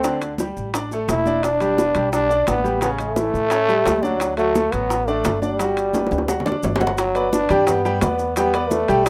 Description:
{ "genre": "latin, salsa", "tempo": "173 BPM", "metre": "4/4", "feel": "straight", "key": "G major", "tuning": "A4 = 440 Hz", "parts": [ { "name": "growling trombone", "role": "melody", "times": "0.0-9.1 s", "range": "F#3 to E4", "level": "-23 LUFS", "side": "equal", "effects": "plate reverb" }, { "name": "bright grand piano", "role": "accompaniment", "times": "0.0-9.1 s", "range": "C#3 to G5", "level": "-26 LUFS", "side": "equal", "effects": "plate reverb" }, { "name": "upright bass", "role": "bass", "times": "0.0-9.1 s", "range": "E1 to A2", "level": "-31 LUFS", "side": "equal", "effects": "none" }, { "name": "bongos", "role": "percussion", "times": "0.0-9.1 s", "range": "none", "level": "-28 LUFS", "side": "equal", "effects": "none" }, { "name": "congas", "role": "percussion", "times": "0.0-9.1 s", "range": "none", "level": "-32 LUFS", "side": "equal", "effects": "none" }, { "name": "maracas", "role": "percussion", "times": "0.0-9.1 s", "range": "none", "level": "-40 LUFS", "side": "equal", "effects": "none" }, { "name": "timbales", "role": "percussion", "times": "0.0-9.1 s", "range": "none", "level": "-31 LUFS", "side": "equal", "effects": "none" } ], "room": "moderate studio reverb, RT60 0.6 s", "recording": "rough home demo mix", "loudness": "-20 LUFS", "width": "mono", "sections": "0.0-7.0 A section; 7.0-9.1 B section", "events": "drum fill 5.9-7.0", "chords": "0.0 Dsus24; 1.4 Em7; 2.8 A7; 4.2 D; 5.6 Gmaj7; 8.4 Em7" }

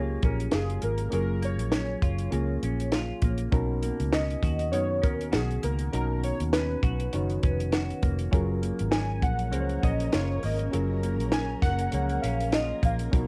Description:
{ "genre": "indie pop, bedroom pop", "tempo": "100 BPM", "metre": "4/4", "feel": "swing 55% on 16ths", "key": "F# major", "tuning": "A4 = 440 Hz", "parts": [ { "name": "warbly lo-fi synth keys", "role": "melody", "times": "0.0-13.0 s", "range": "G#4 to G#5", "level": "-36 LUFS", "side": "equal", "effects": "subtle chorus, cassette tape, analog delay" }, { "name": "reed electric piano", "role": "accompaniment", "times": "0.0-13.3 s", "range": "E#3 to A#5", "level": "-37 LUFS", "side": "equal", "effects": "cassette tape" }, { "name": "semi-hollow electric guitar", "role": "accompaniment", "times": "0.0-13.3 s", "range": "B2 to F#4", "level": "-38 LUFS", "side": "equal", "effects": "analog chorus, warbly pitch drift, cassette tape" }, { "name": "vintage muted fingered electric bass", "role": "bass", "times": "0.0-13.3 s", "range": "E#1 to F#2", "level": "-32 LUFS", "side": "equal", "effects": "none" }, { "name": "compact cocktail drum kit", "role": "drums", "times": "0.2-13.3 s", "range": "hi-hat, kick drum, snare drum", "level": "-30 LUFS", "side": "equal", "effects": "none" }, { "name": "ensemble organ-string", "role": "sustained chords", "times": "8.3-13.3 s", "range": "B2 to A#4", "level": "-40 LUFS", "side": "equal", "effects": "phaser, ensemble chorus, cassette tape" } ], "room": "little or no reverb", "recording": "home recording on cassette", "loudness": "-27 LUFS", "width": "mono", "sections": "0.0-13.3 A section", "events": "none", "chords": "0.0 F#maj7; 3.5 Bmaj9; 8.3 F#maj7" }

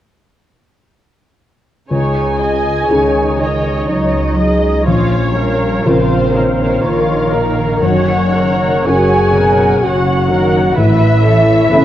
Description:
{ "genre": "cinematic, emotional film score for orchestra", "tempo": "61 BPM", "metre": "3/4", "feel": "uneven beats, rubato", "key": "unclear", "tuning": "A4 = 438 Hz", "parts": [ { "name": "clear French horn", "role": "melody", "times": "1.9-11.8 s", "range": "A#3 to G#4", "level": "-18 LUFS", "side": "left 2 dB", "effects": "none" }, { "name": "muted symphonic violin section", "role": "melody", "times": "1.9-11.8 s", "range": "C#5 to F#5", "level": "-25 LUFS", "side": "left 4 dB", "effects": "none" }, { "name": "muted symphonic violin section", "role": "second line", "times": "1.9-11.8 s", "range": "A#4 to G#5", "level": "-18 LUFS", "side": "equal", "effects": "none" }, { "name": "felt-muted upright piano", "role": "accompaniment", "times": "1.9-11.8 s", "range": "A#1 to A#4", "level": "-17 LUFS", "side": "left 2 dB", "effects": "none" }, { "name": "muted symphonic viola section", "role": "accompaniment", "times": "1.9-11.8 s", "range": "D#4 to F#5", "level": "-19 LUFS", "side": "equal", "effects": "none" }, { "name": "muted studio cello section", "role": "bass", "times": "1.9-11.8 s", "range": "B2 to G3", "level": "-20 LUFS", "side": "right 2 dB", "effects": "none" }, { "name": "muted studio double bass section", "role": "bass", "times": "1.9-11.8 s", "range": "F#1 to C#2", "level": "-18 LUFS", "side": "right 2 dB", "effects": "none" } ], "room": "moderate scoring stage reverb, RT60 1.5 s", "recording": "worn, warbling old tape, cassette tape, warbly pitch drift", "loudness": "-11 LUFS", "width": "side -12 dB against mid", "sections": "1.9-11.8 A section", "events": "none", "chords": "1.9 C#sus2; 4.9 A#m; 7.8 F#; 10.8 Aadd9" }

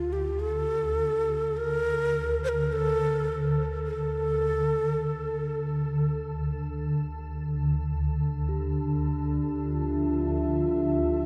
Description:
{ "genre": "dark ambient drone", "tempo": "free time", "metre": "none", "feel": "none", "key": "D minor", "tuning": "A4 = 441 Hz", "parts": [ { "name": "breathy mellow shakuhachi", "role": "melody", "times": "0.0-5.6 s", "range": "F4 to C5", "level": "-30 LUFS", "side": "equal", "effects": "delay" }, { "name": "swarming drone", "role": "drone", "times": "0.0-11.3 s", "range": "D2 to D3", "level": "-31 LUFS", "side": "equal", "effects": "built-in reverb" }, { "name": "bronze singing bowl", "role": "texture", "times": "0.0-11.3 s", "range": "G4", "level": "-47 LUFS", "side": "equal", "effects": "none" }, { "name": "dark analog pad", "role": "sustained chords", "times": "8.6-11.3 s", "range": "D4 to E5", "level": "-29 LUFS", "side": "equal", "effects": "chorus" } ], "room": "wet huge ambient reverb, RT60 8.8 s", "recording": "dark, warm production", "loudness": "-28 LUFS", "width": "mono", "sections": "0.0-11.3 A section", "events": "fade-in on synth drone 0.0-11.3", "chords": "0.0 Dmadd9" }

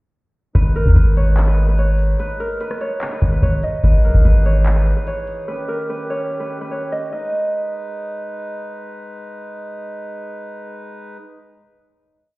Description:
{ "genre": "hip hop, trap", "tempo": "146 BPM", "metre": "4/4", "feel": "half-time", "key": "G# harmonic minor", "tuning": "A4 = 440 Hz", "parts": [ { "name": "Celtic harp", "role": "melody", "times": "0.5-8.9 s", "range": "A#4 to D#5", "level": "-24 LUFS", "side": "right 1 dB", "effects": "low-pass filter, digital delay" }, { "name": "accordion", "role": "sustained chords", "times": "0.6-11.2 s", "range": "D#3 to B4", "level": "-31 LUFS", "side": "equal", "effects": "none" }, { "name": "warm 808-style bass", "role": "bass", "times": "0.6-4.9 s", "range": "E1 to D#2", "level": "-14 LUFS", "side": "equal", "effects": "none" }, { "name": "booming analog drum machine", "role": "drums", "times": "0.6-5.4 s", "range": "handclaps, hi-hat, kick drum, rim click", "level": "-16 LUFS", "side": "equal", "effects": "none" } ], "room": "little or no reverb", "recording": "heard muffled through a wall, stone room reverb, EQ", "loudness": "-16 LUFS", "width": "side -23 dB against mid", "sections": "0.6-7.1 hook; 7.1-10.4 final chord", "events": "none", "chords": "0.6 G#m; 3.8 Emaj7; 5.5 D#7; 7.1 G#m" }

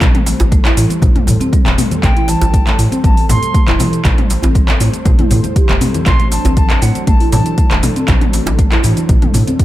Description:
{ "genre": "afro house", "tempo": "119 BPM", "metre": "4/4", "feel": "straight", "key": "A dorian", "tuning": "A4 = 442 Hz", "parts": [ { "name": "warm analog pad", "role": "sustained chords", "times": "0.0-9.6 s", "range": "F#3 to C5", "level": "-26 LUFS", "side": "equal", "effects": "chorus, vintage 12-bit sampler grit, sidechain pumping" }, { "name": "buzzing marimba with soft mallets", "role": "arpeggios", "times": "0.0-9.6 s", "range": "E3 to G4", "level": "-20 LUFS", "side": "equal", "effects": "sidechain pumping, analog delay" }, { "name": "round analog bass", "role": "bass", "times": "0.0-9.4 s", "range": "E1 to A2", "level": "-16 LUFS", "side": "equal", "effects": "tube saturation, sidechain pumping" }, { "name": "deep house drum kit", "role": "drums", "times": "0.0-9.6 s", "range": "handclaps, hi-hat, shaker, toms", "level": "-20 LUFS", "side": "equal", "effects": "overdrive" }, { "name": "electronic kick drum", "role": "drums", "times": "0.0-9.6 s", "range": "none", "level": "-13 LUFS", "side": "equal", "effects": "overdrive" }, { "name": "congas", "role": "percussion", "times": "0.0-9.6 s", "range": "none", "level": "-22 LUFS", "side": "left 2 dB", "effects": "analog delay" }, { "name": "djembe", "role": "percussion", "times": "0.0-9.4 s", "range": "none", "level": "-21 LUFS", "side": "right 1 dB", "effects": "analog delay" }, { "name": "silver concert flute", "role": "melody", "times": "2.0-7.8 s", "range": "F#5 to C6", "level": "-22 LUFS", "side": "equal", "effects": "analog delay" } ], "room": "studio ambience", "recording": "echo-heavy mix", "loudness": "-10 LUFS", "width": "side -15 dB against mid", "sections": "0.0-9.6 A section", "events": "none", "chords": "0.0 Am7; 6.1 D7" }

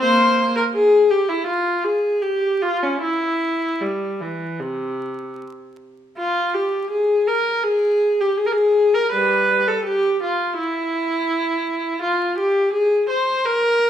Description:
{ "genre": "classical, baroque-style suite movement for unaccompanied viola", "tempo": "75-85 BPM", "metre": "4/4", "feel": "rubato", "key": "unclear", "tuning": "A4 = 439 Hz", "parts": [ { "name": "rich viola", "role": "solo", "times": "0.0-13.9 s", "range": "C3 to C5", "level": "-17 LUFS", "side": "equal", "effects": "none" } ], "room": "moderate recital hall reverb, RT60 1.5 s", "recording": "minimal, uncompressed stereo recording, vinyl crackle", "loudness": "-17 LUFS", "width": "side -10 dB against mid", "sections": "0.0-6.2 A section; 6.2-13.9 B section", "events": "none", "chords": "none" }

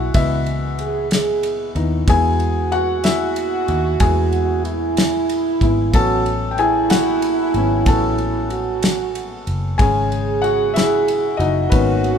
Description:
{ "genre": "six-eight pop ballad", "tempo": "62 BPM (dotted quarters)", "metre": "6/8", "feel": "straight", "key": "E major", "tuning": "A4 = 440 Hz", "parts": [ { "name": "mellow French horn section", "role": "second line", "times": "0.0-12.2 s", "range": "E4 to G#4", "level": "-21 LUFS", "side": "right 5 dB", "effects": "none" }, { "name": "felt-muted upright piano", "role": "accompaniment", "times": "0.0-12.2 s", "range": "C#3 to A5", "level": "-21 LUFS", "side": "left 4 dB", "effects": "none" }, { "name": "vintage muted fingered electric bass", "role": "bass", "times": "0.0-12.2 s", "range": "F#1 to E2", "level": "-22 LUFS", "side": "equal", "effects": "none" }, { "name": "damped 70s drum kit", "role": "drums", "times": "0.1-12.2 s", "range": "kick drum, ride cymbal, snare drum", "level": "-20 LUFS", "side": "equal", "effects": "none" } ], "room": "moderate large studio reverb, RT60 0.9 s", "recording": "band playing live in one room", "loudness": "-16 LUFS", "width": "side -7 dB against mid", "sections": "0.0-12.2 A section", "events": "felt piano solo 0.0-12.2", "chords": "0.0 C#m7; 2.1 E; 5.9 A6; 9.8 G#sus4" }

